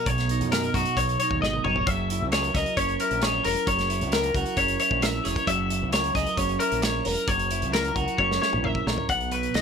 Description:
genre	math rock and midwest emo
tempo	133 BPM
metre	4/4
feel	straight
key	unclear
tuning	A4 = 440 Hz
part	twelve-string electric guitar	accompaniment	0.0-9.6 s	B2 to A#4	-30 LUFS	right 9 dB	spring reverb
part	twelve-string electric guitar	arpeggios	0.0-9.6 s	F#4 to F#5	-25 LUFS	left 4 dB	none
part	growling fingered electric bass	bass	0.1-9.6 s	E1 to F#2	-30 LUFS	equal	overdrive
part	loose indie drum kit	drums	0.1-9.6 s	hi-hat, kick drum, snare drum, toms	-29 LUFS	equal	none
room	little or no reverb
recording	none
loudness	-22 LUFS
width	side -6 dB against mid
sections	0.0-9.1 A section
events	drum fill 1.4-1.9, 8.2-9.1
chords	0.0 Bmaj9; 1.9 F#7; 9.1 B

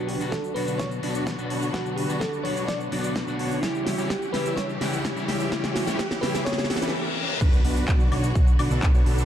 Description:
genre	EDM, festival progressive house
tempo	127 BPM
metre	4/4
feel	straight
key	B minor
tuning	A4 = 440 Hz
part	bell-like FM electric piano	melody	0.0-6.7 s	E4 to D5	-32 LUFS	right 1 dB	chorus, tape echo
part	electric guitar at the edge of break-up	accompaniment	0.0-6.7 s	B2 to G4	-31 LUFS	left 3 dB	vintage 12-bit sampler grit, sidechain pumping
part	rich studio string section	sustained chords	0.0-9.2 s	D3 to G4	-34 LUFS	equal	sidechain pumping
part	dense compressed supersaw	riff	0.0-9.2 s	D4 to F#5	-31 LUFS	equal	sidechain pumping, low-pass filter, tape echo
part	riser, reverse cymbal and impact	sound effects	2.4-9.2 s	none	-34 LUFS	left 1 dB	none
part	big-room dance drum kit	drums	0.1-9.2 s	crash cymbal, handclaps, hi-hat, shaker, snare drum, woodblock	-31 LUFS	equal	none
part	electronic kick drum	drums	0.3-8.9 s	none	-22 LUFS	equal	high-pass filter on kick
part	fat analog bass	bass	7.4-9.2 s	B1	-26 LUFS	equal	sidechain pumping
room	light reverb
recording	dark, warm production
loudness	-22 LUFS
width	side -10 dB against mid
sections	0.0-7.4 A section; 7.4-9.2 B section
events	build-up 0.0-7.4; drum fill 0.0-6.9; filter sweep on supersaw synth 0.0-7.4; riser 2.4-7.4; reverse cymbal 6.5-7.4; drop 7.4-9.2; impact 7.4-9.2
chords	0.0 Bm; 3.6 C#dim; 7.4 Bm

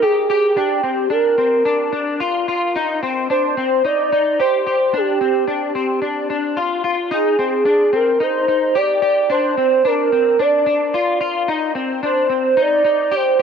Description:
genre	dream pop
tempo	110 BPM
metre	4/4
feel	straight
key	unclear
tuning	A4 = 440 Hz
part	warm velvety synth lead	melody	0.0-13.4 s	G4 to D5	-16 LUFS	right 2 dB	chorus, analog delay
part	clean electric guitar	arpeggios	0.0-13.4 s	C4 to G4	-20 LUFS	left 3 dB	ensemble chorus, analog delay
room	light reverb, digital ambience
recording	dry, gritty hardware recording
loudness	-15 LUFS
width	side -6 dB against mid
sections	0.0-13.4 A section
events	none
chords	0.0 Abmaj7(no3); 0.6 Gm7; 2.8 Eb6; 4.9 Csus24; 7.1 Abmaj7; 9.3 C9sus4; 11.5 Eb6

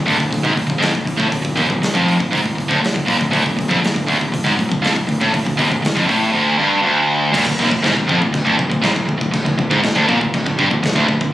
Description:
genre	heavy metal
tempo	120 BPM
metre	4/4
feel	straight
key	D minor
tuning	A4 = 442 Hz
part	distorted electric guitar	riff	0.0-11.3 s	D2 to Bb2	-16 LUFS	equal	overdrive
part	fuzz picked electric bass	bass	0.0-11.3 s	D1 to Bb1	-23 LUFS	equal	overdrive
part	big rock drum kit	drums	0.1-11.3 s	china cymbal, crash cymbal, hi-hat, kick drum, snare drum	-21 LUFS	equal	none
room	little or no reverb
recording	recorded on a phone in the room, studio reverb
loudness	-14 LUFS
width	side -14 dB against mid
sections	0.0-7.3 A section; 7.3-11.3 B section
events	none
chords	0.0 Dm; 7.3 N.C.

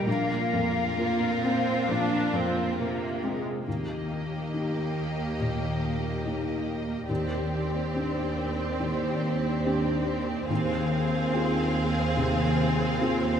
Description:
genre	cinematic, emotional film score for orchestra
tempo	69 BPM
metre	4/4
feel	uneven beats, rubato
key	Eb major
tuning	A4 = 441 Hz
part	warm symphonic violin section	melody	0.0-13.4 s	Bb4 to F5	-37 LUFS	left 3 dB	none
part	bright small flute group	second line	0.0-2.7 s	F5	-32 LUFS	left 5 dB	none
part	rich symphonic violin section	second line	0.0-13.4 s	F4 to Ab4	-35 LUFS	left 2 dB	none
part	felt-muted upright piano	accompaniment	0.0-13.4 s	Bb1 to Bb4	-31 LUFS	left 1 dB	none
part	rich symphonic viola section	accompaniment	0.0-13.4 s	Ab3 to D4	-32 LUFS	right 3 dB	none
part	concert harp	arpeggios	0.0-13.4 s	Bb2 to Ab4	-34 LUFS	left 4 dB	none
part	rich symphonic cello section	bass	0.0-13.4 s	Eb2 to C3	-33 LUFS	right 4 dB	none
part	rich symphonic double bass section	bass	3.7-13.4 s	Eb2	-34 LUFS	right 4 dB	none
room	wet scoring stage reverb, RT60 1.6 s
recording	minimal, uncompressed stereo recording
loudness	-25 LUFS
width	side -8 dB against mid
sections	0.0-3.7 A section; 3.7-13.4 B section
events	none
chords	0.1 Bbsus2; 3.7 Eb; 7.1 Cmadd9/Eb; 10.5 Fm/Eb

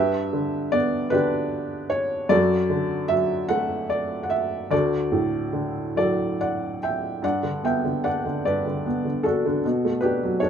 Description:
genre	classical, lyrical solo piano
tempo	50 BPM (dotted quarters)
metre	6/8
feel	rubato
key	unclear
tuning	A4 = 439 Hz
part	felt-muted upright piano	solo	0.0-10.5 s	D2 to G5	-21 LUFS	equal	none
room	light reverb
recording	minimal, uncompressed stereo recording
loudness	-21 LUFS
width	side -8 dB against mid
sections	0.0-7.2 A section; 7.2-10.5 B section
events	none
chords	0.0 G; 2.3 D/F#; 4.7 Dadd9; 7.2 Gmaj7; 9.6 Bm7

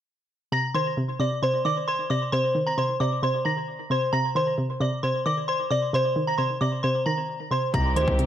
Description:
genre	hip hop, trap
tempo	133 BPM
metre	4/4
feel	half-time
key	C minor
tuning	A4 = 440 Hz
part	delicate synth tine bell	melody	0.5-8.1 s	C5 to Bb6	-24 LUFS	equal	chorus, phaser, low-pass filter, tape echo
part	hollow square pluck	accompaniment	0.5-8.3 s	C3 to Eb3	-27 LUFS	equal	chorus, low-pass filter, tape echo
part	dark chamber string section	sustained chords	7.7-8.3 s	C3 to G4	-31 LUFS	left 1 dB	none
part	hard-hitting 808-style bass	bass	7.7-8.3 s	C2 to D2	-25 LUFS	equal	none
part	trap drum kit	drums	7.7-8.3 s	hi-hat, kick drum	-27 LUFS	equal	vintage 12-bit sampler grit
room	light reverb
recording	echo-heavy mix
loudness	-22 LUFS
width	side -10 dB against mid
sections	0.5-7.7 A section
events	none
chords	0.5 Cm

